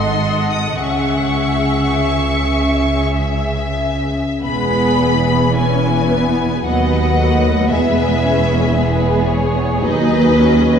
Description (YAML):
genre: classical, slow romantic movement for string orchestra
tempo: 45-58 BPM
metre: 3/4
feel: rubato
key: C# minor, E major from 4.4 s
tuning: A4 = 441 Hz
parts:
  - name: rich studio violin section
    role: melody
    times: 0.0-10.8 s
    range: B4 to D#6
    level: -21 LUFS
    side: left 3 dB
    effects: none
  - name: warm studio violin section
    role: second line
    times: 0.0-10.8 s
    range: G#4 to F#5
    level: -21 LUFS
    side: left 2 dB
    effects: none
  - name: rich studio viola section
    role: accompaniment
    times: 0.0-10.8 s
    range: E3 to E5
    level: -20 LUFS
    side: equal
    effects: none
  - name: rich studio double bass section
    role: bass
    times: 0.0-10.8 s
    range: E1 to D#2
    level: -19 LUFS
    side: right 2 dB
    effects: none
  - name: warm studio cello section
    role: bass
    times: 0.0-10.8 s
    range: D#2 to C#3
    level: -19 LUFS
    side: right 1 dB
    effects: none
room: wet scoring stage reverb, RT60 1.9 s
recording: heard from further back in the room, nothing above 10.7 kHz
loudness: -13 LUFS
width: side -7 dB against mid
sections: 0.0-4.4 A section; 4.4-10.8 B section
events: none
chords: 0.0 G#7b9; 0.8 C#m; 4.4 E; 6.7 B/D#; 7.7 E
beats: | 0.78 1.96 3.16 | 4.43 5.56 6.66 | 7.71 8.77 9.83